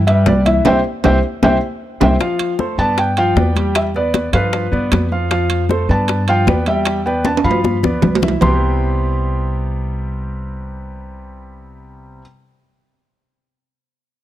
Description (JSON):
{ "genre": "Afro-Cuban jazz", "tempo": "155 BPM", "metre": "4/4", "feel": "straight", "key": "C major", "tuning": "A4 = 440 Hz", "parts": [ { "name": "upright bass", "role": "bass", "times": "0.0-12.2 s", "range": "C2 to G2", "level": "-18 LUFS", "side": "equal", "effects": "none" }, { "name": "felt-muted upright piano", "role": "melody", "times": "0.1-12.2 s", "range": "B4 to C6", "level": "-20 LUFS", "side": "equal", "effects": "none" }, { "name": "warm concert grand piano", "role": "accompaniment", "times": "0.1-12.2 s", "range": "C3 to G5", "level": "-20 LUFS", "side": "equal", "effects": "none" }, { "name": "congas", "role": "percussion", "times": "0.1-8.5 s", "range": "none", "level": "-21 LUFS", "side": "left 2 dB", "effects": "none" }, { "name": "timbales", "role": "percussion", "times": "0.1-8.5 s", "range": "none", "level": "-21 LUFS", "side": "right 6 dB", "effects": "none" }, { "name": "bongos", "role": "percussion", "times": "0.3-8.5 s", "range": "none", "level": "-22 LUFS", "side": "left 8 dB", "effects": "none" } ], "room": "studio reverb", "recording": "dry, close 1970s-style studio recording", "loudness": "-14 LUFS", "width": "side -13 dB against mid", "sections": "0.0-2.2 A section; 2.2-8.4 B section; 8.4-11.5 C section", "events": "band accent 0.7-2.2; drum fill 1.0-2.2, 7.3-8.4", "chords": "0.0 Cmaj7; 1.4 C; 2.2 F6; 3.0 Em7; 4.5 G7; 5.3 F6; 6.1 Em7; 7.6 G7; 8.4 Cmaj7" }